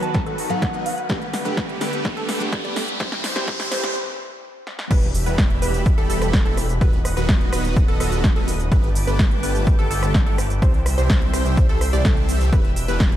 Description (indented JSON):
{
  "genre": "EDM, festival progressive house",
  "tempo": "126 BPM",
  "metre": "4/4",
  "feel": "straight",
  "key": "E minor",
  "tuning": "A4 = 438 Hz",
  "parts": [
    { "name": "soft synth bell", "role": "melody", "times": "0.0-1.1 s", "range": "F#5 to A5", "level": "-29 LUFS", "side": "equal", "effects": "chorus, phaser, tape echo" },
    { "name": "lush unison pad", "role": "sustained chords", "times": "0.0-13.2 s", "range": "D3 to E6", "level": "-32 LUFS", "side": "equal", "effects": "chorus, sidechain pumping" },
    { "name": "wide unison pluck", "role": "arpeggios", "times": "0.0-13.2 s", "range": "A4 to D#5", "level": "-30 LUFS", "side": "right 1 dB", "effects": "sidechain pumping, tape echo" },
    { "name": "supersaw chords", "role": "riff", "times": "0.0-13.2 s", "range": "D3 to D#5", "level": "-28 LUFS", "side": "right 1 dB", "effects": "phaser, sidechain pumping, low-pass filter, tape echo" },
    { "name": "big-room dance drum kit", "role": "drums", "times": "0.0-13.2 s", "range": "cabasa, crash cymbal, hi-hat, rim click, snare drum", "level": "-27 LUFS", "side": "equal", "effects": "overdrive" },
    { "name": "riser and impact", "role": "sound effects", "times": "0.0-6.8 s", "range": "none", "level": "-31 LUFS", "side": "equal", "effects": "none" },
    { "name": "picked steel-string acoustic guitar", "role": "accompaniment", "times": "0.1-3.8 s", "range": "F#3 to A4", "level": "-32 LUFS", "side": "left 4 dB", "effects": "none" },
    { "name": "electronic kick drum", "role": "drums", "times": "0.1-13.1 s", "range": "none", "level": "-19 LUFS", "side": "equal", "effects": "overdrive" },
    { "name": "wide detuned saw bass", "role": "bass", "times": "4.9-13.2 s", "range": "D#1 to C2", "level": "-23 LUFS", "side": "equal", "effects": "chorus, sidechain pumping" }
  ],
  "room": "light reverb",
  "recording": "dark, warm production, high-pass filter",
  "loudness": "-17 LUFS",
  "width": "side -12 dB against mid",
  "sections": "0.0-4.9 A section; 4.9-13.2 B section",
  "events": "build-up 0.0-4.9; drum fill 0.0-4.0, 4.7; riser 0.0-4.0; filter sweep on synth pluck 0.0-4.9; filter sweep 0.0-4.9; break 4.0-4.9; drop 4.9-13.2; impact 4.9-6.8",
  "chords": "0.0 B/D#; 1.1 Gadd9; 3.0 C; 4.9 Em; 6.8 B/D#; 8.7 Gadd9; 10.6 C; 12.5 Em",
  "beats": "0.14 0.62 | 1.10 1.57 2.05 2.53 | 3.00 3.48 3.95 4.43 | 4.91 5.38 5.86 6.33 | 6.81 7.29 7.76 8.24 | 8.72 9.19 9.67 10.14 | 10.62 11.10 11.57 12.05 | 12.53 13.00"
}